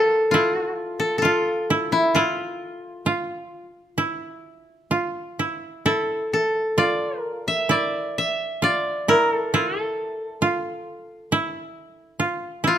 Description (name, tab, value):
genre	japanese traditional, Japanese chamber music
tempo	66 BPM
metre	4/4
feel	rubato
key	unclear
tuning	A4 = 440 Hz
part	koto	melody	0.0-12.8 s	E4 to E5	-21 LUFS	left 1 dB	none
part	koto	second line	0.0-12.8 s	E4 to F4	-24 LUFS	right 2 dB	none
room	moderate recital hall reverb, RT60 1.3 s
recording	close, detailed microphones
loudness	-21 LUFS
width	side -10 dB against mid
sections	0.0-12.8 A section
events	none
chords	none